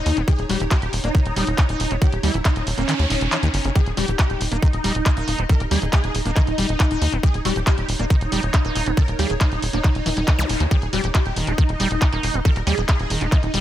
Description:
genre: psychedelic trance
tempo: 138 BPM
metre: 4/4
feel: straight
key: unclear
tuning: A4 = 438 Hz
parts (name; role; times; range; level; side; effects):
- swarming rave lead; melody; 0.0-13.6 s; Db4 to Bb4; -27 LUFS; equal; chorus, phaser, cassette tape, sidechain pumping, digital delay
- evolving wavetable pad; sustained chords; 0.0-13.6 s; Eb4 to Eb5; -32 LUFS; right 3 dB; chorus, built-in reverb, sidechain pumping
- liquid acid bass; riff; 0.0-13.6 s; Db3 to Eb4; -27 LUFS; moving between left 9 dB and right 7 dB; chorus, auto-pan, sidechain pumping, ping-pong delay
- tight sequencer bass; bass; 0.1-13.6 s; Eb1 to Eb2; -23 LUFS; equal; none
- drum and bass drum kit; drums; 0.1-13.6 s; handclaps, hi-hat; -27 LUFS; equal; none
- electronic kick drum; drums; 0.3-13.4 s; none; -17 LUFS; equal; none
- noise sweep and zap; sound effects; 2.6-3.8, 10.4-10.5 s; none; -30 LUFS; right 2 dB; none
- resonant blip pluck; second line; 4.0-13.3 s; Eb3 to Db4; -38 LUFS; right 4 dB; none
room: little or no reverb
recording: none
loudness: -18 LUFS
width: side -12 dB against mid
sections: 0.0-13.6 A section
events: noise sweep 2.6-3.8; kick drops out 2.9-3.8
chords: 0.0 Eb5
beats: | 0.28 0.71 1.15 1.58 | 2.02 2.45 2.89 3.32 | 3.75 4.19 4.62 5.06 | 5.50 5.93 6.36 6.80 | 7.23 7.67 8.10 8.54 | 8.97 9.41 9.84 10.28 | 10.71 11.15 11.58 12.02 | 12.45 12.89 13.32

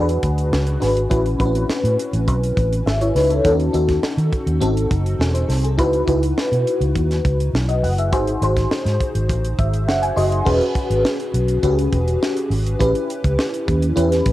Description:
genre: polished 1980s jazz-funk pop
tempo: 103 BPM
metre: 4/4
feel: straight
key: unclear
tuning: A4 = 443 Hz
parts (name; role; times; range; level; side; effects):
- FM electric piano with soft pad layer; accompaniment; 0.0-14.3 s; B#3 to B#5; -20 LUFS; left 1 dB; phaser, ensemble chorus, cassette tape
- vintage muted fingered electric bass; bass; 0.0-14.3 s; E1 to D#3; -20 LUFS; equal; none
- tight funk drum kit; drums; 0.1-14.3 s; crash cymbal, hi-hat, kick drum, snare drum; -24 LUFS; equal; none
room: light reverb, small room ambience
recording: home recording on cassette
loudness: -16 LUFS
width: side -15 dB against mid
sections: 0.0-10.5 A section; 10.5-14.3 B section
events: FM electric piano fill 9.3-10.5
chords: 0.0 E7; 1.1 A69; 3.4 D#m7b5; 4.6 G#7b9; 5.8 C#m11; 8.1 G#7; 10.5 E6; 12.8 A7 (rootless)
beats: 0.53 | 1.11 1.70 2.28 2.86 | 3.45 4.03 4.62 5.20 | 5.79 6.37 6.96 7.54 | 8.13 8.71 9.30 9.88 | 10.46 11.05 11.63 12.22 | 12.80 13.39 13.97

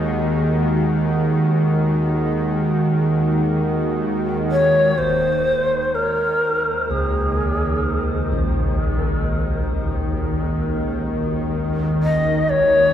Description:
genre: dark ambient drone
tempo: 63 BPM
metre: 4/4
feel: straight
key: Eb minor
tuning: A4 = 440 Hz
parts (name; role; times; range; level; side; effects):
- sweeping resonant pad; sustained chords; 0.0-12.9 s; Eb3 to Gb4; -25 LUFS; equal; chorus, shimmer reverb
- bowed-like drone; drone; 0.0-12.9 s; Eb2 to Eb3; -21 LUFS; equal; built-in reverb
- gamelan-type bossed gongs; arpeggios; 0.8-12.9 s; Bb1 to Ab4; -26 LUFS; equal; none
- mellow long shakuhachi; melody; 4.5-12.9 s; Ab4 to Eb5; -19 LUFS; left 1 dB; shimmer reverb, dub echo
- impact; percussion; 5.0-5.2 s; none; -39 LUFS; equal; low-pass filter on sfx
room: wet spring reverb, RT60 2.6 s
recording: echo-heavy mix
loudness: -17 LUFS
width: side -10 dB against mid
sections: 0.0-5.0 A section; 5.0-12.9 B section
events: fade-in on impacts and reversed cymbals 5.0-12.9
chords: 0.0 Ebm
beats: 0.20 | 1.15 2.10 3.05 4.02 | 4.98 5.93 6.88 7.83 | 8.77 9.71 10.64 11.57 | 12.51

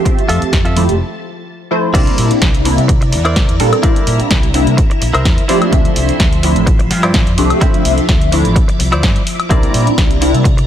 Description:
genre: filtered disco house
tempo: 127 BPM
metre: 4/4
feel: swing 53% on 16ths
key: C mixolydian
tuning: A4 = 437 Hz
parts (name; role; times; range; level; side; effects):
- funky polysynth comp; accompaniment; 0.0-10.4 s; F3 to E5; -16 LUFS; equal; chorus, phaser, sidechain pumping, low-pass filter
- string machine, full ensemble; sustained chords; 0.0-10.7 s; F3 to D6; -22 LUFS; equal; phaser, ensemble chorus, sidechain pumping, low-pass filter
- electronic kick drum; drums; 0.1-10.6 s; none; -14 LUFS; equal; studio ambience
- punchy analog drum machine; drums; 0.1-10.7 s; crash cymbal, hi-hat, snare drum, woodblock; -19 LUFS; left 1 dB; sidechain pumping on hats, studio ambience, sidechain pumping on cymbals, sidechain pumping on perc
- tube shaker and congas; percussion; 0.1-1.0 s; none; -25 LUFS; left 4 dB; none
- direct-recorded clean electric guitar; riff; 0.3-10.6 s; E4 to E5; -20 LUFS; right 1 dB; vintage 12-bit sampler grit, sidechain pumping, low-pass filter
- overdriven fingered electric bass; bass; 0.3-10.7 s; F1 to C3; -16 LUFS; equal; sidechain pumping, low-pass filter
room: little or no reverb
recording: none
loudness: -10 LUFS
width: side -10 dB against mid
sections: 0.0-1.9 A section; 1.9-10.7 B section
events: break 1.0-1.9; drop 1.9-10.7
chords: 0.1 Fmaj7; 1.9 C9; 5.5 Dm9; 9.5 C9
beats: | 0.06 0.53 1.00 1.48 | 1.95 2.42 2.89 3.37 | 3.84 4.31 4.78 5.25 | 5.73 6.20 6.67 7.14 | 7.62 8.09 8.56 9.04 | 9.51 9.98 10.45

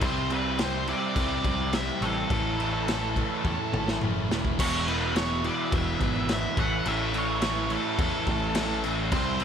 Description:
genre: quiet-loud alternative rock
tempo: 105 BPM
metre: 4/4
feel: straight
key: unclear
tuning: A4 = 440 Hz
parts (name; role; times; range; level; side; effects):
- octave-fuzz lead guitar; melody; 0.0-9.4 s; A4 to F#5; -32 LUFS; right 3 dB; distortion, analog delay
- string machine, violins; sustained chords; 0.0-9.4 s; E4 to A5; -41 LUFS; equal; none
- overdriven electric guitar; riff; 0.0-9.4 s; E2 to C4; -35 LUFS; left 1 dB; phaser
- overdriven semi-hollow guitar; riff; 0.0-9.4 s; E2 to C4; -33 LUFS; right 13 dB; none
- raw garage guitar; riff; 0.0-9.4 s; A2 to E4; -35 LUFS; left 13 dB; overdrive
- fuzz picked electric bass; bass; 0.0-9.4 s; E1 to E2; -32 LUFS; left 1 dB; overdrive
- raw garage drum kit; drums; 0.0-9.4 s; crash cymbal, kick drum, snare drum, toms; -29 LUFS; left 1 dB; none
room: small room reverb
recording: none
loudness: -24 LUFS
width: side -8 dB against mid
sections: 0.0-4.6 A section; 4.6-9.4 A section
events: drum fill 3.4-4.6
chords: 0.0 C; 2.3 A; 4.6 Eadd9; 6.6 A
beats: | 0.02 0.59 1.16 1.73 | 2.30 2.87 3.44 4.01 | 4.58 5.15 5.72 6.29 | 6.86 7.43 8.00 8.56 | 9.13

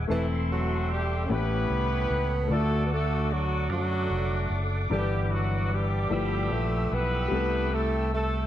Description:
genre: gospel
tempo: 50 BPM (dotted quarters)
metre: 6/8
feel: straight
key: G major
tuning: A4 = 440 Hz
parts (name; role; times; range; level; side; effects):
- clear horn section; melody; 0.0-8.5 s; A3 to B4; -33 LUFS; left 3 dB; none
- clear baby grand piano; accompaniment; 0.0-8.5 s; G2 to D5; -32 LUFS; left 4 dB; none
- tonewheel organ; sustained chords; 0.0-8.5 s; A4 to E6; -37 LUFS; right 1 dB; slow rotary speaker, chorus vibrato
- fingered electric bass; bass; 0.0-8.5 s; E1 to F#2; -28 LUFS; equal; none
- breathy tenor saxophone; melody; 0.1-8.5 s; E3 to C#4; -32 LUFS; right 3 dB; tape echo
room: light reverb, small room ambience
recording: none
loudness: -24 LUFS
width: side -12 dB against mid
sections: 0.0-8.5 A section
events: none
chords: 0.1 Am/E; 1.3 A9; 2.5 D; 4.9 G6; 6.1 G13; 7.3 C6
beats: | 0.09 1.29 | 2.50 3.70 | 4.90 6.11 | 7.31

